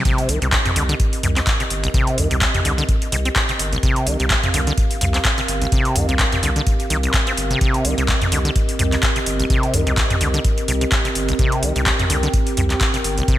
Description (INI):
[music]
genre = acid house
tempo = 127 BPM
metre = 4/4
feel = swing 55% on 16ths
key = C minor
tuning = A4 = 440 Hz
[part]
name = acid bass, saw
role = riff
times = 0.0-13.4 s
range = C2 to C4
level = -23 LUFS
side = equal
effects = overdrive, ping-pong delay
[part]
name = dark analog pad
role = sustained chords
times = 0.4-13.4 s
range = C4 to G5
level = -26 LUFS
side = right 1 dB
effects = chorus, sidechain pumping
[part]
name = booming analog drum machine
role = drums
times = 0.1-13.4 s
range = handclaps, hi-hat, toms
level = -21 LUFS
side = equal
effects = gated reverb
[part]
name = electronic kick drum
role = drums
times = 0.1-13.4 s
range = none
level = -20 LUFS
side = equal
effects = none
[part]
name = saturated sub bass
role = bass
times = 0.3-13.2 s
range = G1 to C2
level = -22 LUFS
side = equal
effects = tube saturation, sidechain pumping
[sound]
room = light reverb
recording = bright 1980s-style digital production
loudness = -16 LUFS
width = side -14 dB against mid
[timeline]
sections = 0.1-13.4 A section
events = drop 0.1-13.4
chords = 0.1 Cm7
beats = | 0.05 0.53 1.00 1.47 | 1.94 2.42 2.89 3.36 | 3.83 4.30 4.78 5.25 | 5.72 6.19 6.67 7.14 | 7.61 8.08 8.56 9.03 | 9.50 9.97 10.45 10.92 | 11.39 11.86 12.34 12.81 | 13.28